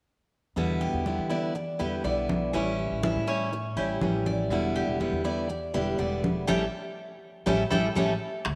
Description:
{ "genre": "latin, Cuban son and guajira", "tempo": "122 BPM", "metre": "4/4", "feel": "straight", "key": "unclear", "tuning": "A4 = 438 Hz", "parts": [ { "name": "fingerpicked steel-string acoustic guitar", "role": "accompaniment", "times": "0.6-8.1 s", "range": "B2 to E4", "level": "-32 LUFS", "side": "equal", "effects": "none" }, { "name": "upright bass", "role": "bass", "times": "0.6-8.6 s", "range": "E1 to E3", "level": "-35 LUFS", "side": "equal", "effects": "none" }, { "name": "congas", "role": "percussion", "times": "0.6-8.6 s", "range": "none", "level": "-34 LUFS", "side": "equal", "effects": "none" }, { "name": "Cuban tres", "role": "arpeggios", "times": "0.8-8.1 s", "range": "C#4 to D5", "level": "-33 LUFS", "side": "equal", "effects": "none" }, { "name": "timbales", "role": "percussion", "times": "8.4-8.6 s", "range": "none", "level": "-33 LUFS", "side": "equal", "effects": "none" }, { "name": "bongos", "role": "percussion", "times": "8.5-8.6 s", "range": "none", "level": "-36 LUFS", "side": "equal", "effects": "none" } ], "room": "wet echo chamber reverb, RT60 2.6 s", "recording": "none", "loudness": "-28 LUFS", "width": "mono", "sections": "0.6-8.5 A section", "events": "band accent 6.5-8.5", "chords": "0.6 Em7; 2.5 A7; 4.5 Em7; 6.5 A7" }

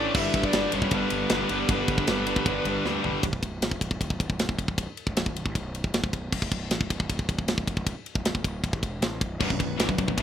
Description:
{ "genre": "heavy metal", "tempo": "156 BPM", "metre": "4/4", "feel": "straight", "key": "B minor", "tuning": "A4 = 440 Hz", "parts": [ { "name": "high-gain lead guitar", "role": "melody", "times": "0.0-2.9 s", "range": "B4 to E5", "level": "-33 LUFS", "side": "left 2 dB", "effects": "distortion, tape echo" }, { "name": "high-gain lead guitar", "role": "second line", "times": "0.0-2.9 s", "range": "B3 to E4", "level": "-34 LUFS", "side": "right 3 dB", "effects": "distortion" }, { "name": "chamber organ, principal", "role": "sustained chords", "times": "0.0-3.2, 9.4-10.2 s", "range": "E3 to B4", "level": "-36 LUFS", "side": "left 1 dB", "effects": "none" }, { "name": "high-gain distorted guitar", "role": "riff", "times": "0.0-3.2, 9.4-10.2 s", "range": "B1 to A3", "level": "-30 LUFS", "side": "right 12 dB", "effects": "distortion" }, { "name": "tight distorted guitar", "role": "riff", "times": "0.0-3.2, 9.4-10.2 s", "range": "B1 to A3", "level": "-29 LUFS", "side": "left 14 dB", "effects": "distortion" }, { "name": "fuzz picked electric bass", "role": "bass", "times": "0.0-10.2 s", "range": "B0 to D2", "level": "-34 LUFS", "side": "equal", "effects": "overdrive" }, { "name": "tight metal drum kit", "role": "drums", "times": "0.1-10.2 s", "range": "crash cymbal, kick drum, ride cymbal, snare drum, toms", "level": "-27 LUFS", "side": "equal", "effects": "none" } ], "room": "small room ambience", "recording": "rough home demo mix", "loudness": "-24 LUFS", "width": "side -10 dB against mid", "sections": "0.0-3.2 A section; 3.2-10.2 B section", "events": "drum fill 2.9-3.2", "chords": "0.1 G; 3.2 Bm" }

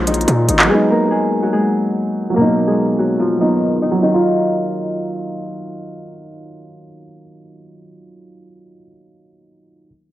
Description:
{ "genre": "hip hop, trap", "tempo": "144 BPM", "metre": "4/4", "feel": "half-time", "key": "Eb minor", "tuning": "A4 = 440 Hz", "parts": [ { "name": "Celtic harp", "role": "melody", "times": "0.0-7.9 s", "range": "Eb3 to Bb4", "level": "-18 LUFS", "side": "left 2 dB", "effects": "low-pass filter, cassette tape" }, { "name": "dark concert grand piano", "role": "accompaniment", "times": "0.0-9.9 s", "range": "B2 to F4", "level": "-18 LUFS", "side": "right 2 dB", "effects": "low-pass filter, cassette tape" }, { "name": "distorted 808-style bass", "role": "bass", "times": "0.0-0.7 s", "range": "Ab1 to Bb2", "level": "-17 LUFS", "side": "equal", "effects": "distortion" }, { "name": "trap drum kit", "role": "drums", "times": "0.1-0.7 s", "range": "handclaps, hi-hat", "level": "-16 LUFS", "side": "equal", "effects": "cassette tape" } ], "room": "small room reverb", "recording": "home recording on cassette", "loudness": "-14 LUFS", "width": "side -14 dB against mid", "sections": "0.0-4.0 A section; 4.0-7.4 B section", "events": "filter sweep 0.0-4.0", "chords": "0.0 Bbsus4; 0.7 Abm7; 2.4 Bmaj7; 4.0 Ebmadd9" }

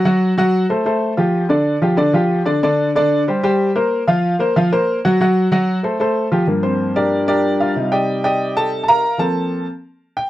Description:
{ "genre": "latin", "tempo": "187 BPM", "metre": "4/4", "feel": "straight", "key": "G minor", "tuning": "A4 = 441 Hz", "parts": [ { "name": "clear grand piano", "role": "solo", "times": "0.0-10.3 s", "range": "G2 to Bb5", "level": "-14 LUFS", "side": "equal", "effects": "none" } ], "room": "light reverb", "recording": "dry, close 1970s-style studio recording", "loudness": "-14 LUFS", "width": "side -15 dB against mid", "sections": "0.0-6.5 A section; 6.5-10.3 B section", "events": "grand piano solo 6.5-10.3", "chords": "0.1 F#dim; 1.3 G5; 2.6 Csus2; 3.9 Fsus4; 5.2 F#dim; 6.5 Gm7; 7.8 Cmadd9; 9.0 Fsus4" }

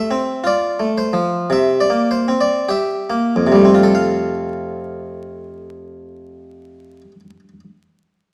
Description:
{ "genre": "classical, baroque-style suite movement for harpsichord", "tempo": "46-60 BPM", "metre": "4/4", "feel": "rubato", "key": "F major", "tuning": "A4 = 441 Hz", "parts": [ { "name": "harpsichord", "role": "solo", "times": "0.0-7.6 s", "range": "F2 to F5", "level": "-18 LUFS", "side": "equal", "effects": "none" } ], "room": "moderate recital hall reverb, RT60 1.4 s", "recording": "dark, warm production, vinyl crackle", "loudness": "-17 LUFS", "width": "mono", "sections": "0.0-3.9 A section; 3.9-8.3 B section", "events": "slowing down 0.0-3.9", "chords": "0.0 F; 1.5 C7; 3.9 F" }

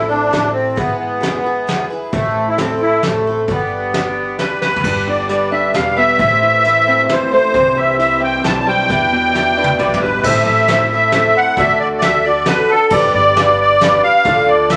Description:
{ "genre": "folk rock and heartland rock", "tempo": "133 BPM", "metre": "3/4", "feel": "straight", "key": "A harmonic minor, A minor from 4.8 s", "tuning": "A4 = 441 Hz", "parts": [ { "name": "musette accordion", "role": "melody", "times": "0.0-14.8 s", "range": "A3 to A5", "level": "-16 LUFS", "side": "equal", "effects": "none" }, { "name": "picked twelve-string acoustic guitar", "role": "accompaniment", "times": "0.0-14.8 s", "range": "A2 to C5", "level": "-23 LUFS", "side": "equal", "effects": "none" }, { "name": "upright bass", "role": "bass", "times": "0.0-14.8 s", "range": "E1 to E2", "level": "-29 LUFS", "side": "equal", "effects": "none" }, { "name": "soft brush drum kit", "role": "drums", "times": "0.3-14.8 s", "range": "crash cymbal, hi-hat, kick drum, snare drum, toms", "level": "-24 LUFS", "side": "equal", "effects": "none" }, { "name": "electric guitar through a small old amp", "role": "riff", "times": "4.8-10.2 s", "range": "E2 to D4", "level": "-24 LUFS", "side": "equal", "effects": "tremolo" }, { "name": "dark upright piano", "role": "accompaniment", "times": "10.3-14.8 s", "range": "E4 to F5", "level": "-27 LUFS", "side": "equal", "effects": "none" } ], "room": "moderate large studio reverb, RT60 1.2 s", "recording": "none", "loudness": "-14 LUFS", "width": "mono", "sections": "0.0-4.8 A section; 4.8-10.2 B section; 10.2-14.8 C section", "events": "drum fill 4.6, 9.3-10.2", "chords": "0.0 Am; 0.8 E/G#; 2.1 Am; 3.5 G; 6.2 Am; 7.5 C; 8.9 Em7; 10.2 Am; 11.6 D; 12.9 G" }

